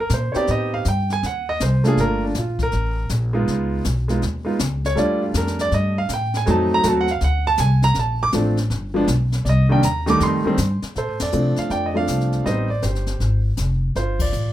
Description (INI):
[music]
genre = jazz piano trio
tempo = 160 BPM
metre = 4/4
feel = swing 66% on 8ths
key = Bb major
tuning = A4 = 439 Hz
[part]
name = warm grand piano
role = melody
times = 0.0-14.5 s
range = Eb3 to D6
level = -20 LUFS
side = right 1 dB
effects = none
[part]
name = upright bass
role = bass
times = 0.1-14.5 s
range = F1 to C3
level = -21 LUFS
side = equal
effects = none
[part]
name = jazz brush drum kit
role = drums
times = 0.1-14.5 s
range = brushed snare drum, crash cymbal, hi-hat, kick drum, ride cymbal, snare drum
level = -30 LUFS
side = left 3 dB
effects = none
[sound]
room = light reverb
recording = minimal, uncompressed stereo recording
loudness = -18 LUFS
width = side -13 dB against mid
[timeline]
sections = 0.0-10.9 A section; 10.9-14.5 B section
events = grand piano solo 0.0-10.9; band accent 11.1, 14.1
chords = 0.5 Am7b5; 1.2 Cdim; 2.0 Gm9; 3.5 Db9; 5.0 Ebmaj9#11; 6.5 F7b9; 8.0 Bbmaj9; 8.7 G; 9.5 Cm7; 10.2 F9; 10.9 Bbmaj9 (rootless); 12.4 Am7b5; 13.2 Fm; 13.9 G7sus2